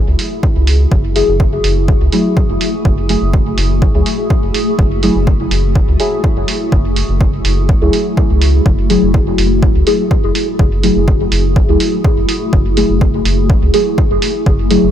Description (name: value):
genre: dub techno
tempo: 124 BPM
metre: 4/4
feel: straight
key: F# minor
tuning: A4 = 440 Hz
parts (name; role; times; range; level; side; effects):
- granular cloud pad; sustained chords; 0.0-14.9 s; A3 to G#4; -19 LUFS; left 1 dB; built-in reverb, lush chorus, sidechain pumping
- round analog bass; bass; 0.1-14.9 s; F#1 to C#2; -15 LUFS; equal; sidechain pumping
- electronic hi-hat; drums; 0.2-14.8 s; none; -22 LUFS; right 4 dB; none
- electronic kick drum; drums; 0.4-14.6 s; none; -14 LUFS; equal; none
- deep mellow chord stab; stabs; 1.2-14.9 s; F#3 to G#4; -17 LUFS; left 1 dB; chorus, phaser, sidechain pumping, dub echo
room: light reverb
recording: none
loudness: -10 LUFS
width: side -10 dB against mid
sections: 0.0-14.9 A section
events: none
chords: 0.0 F#m9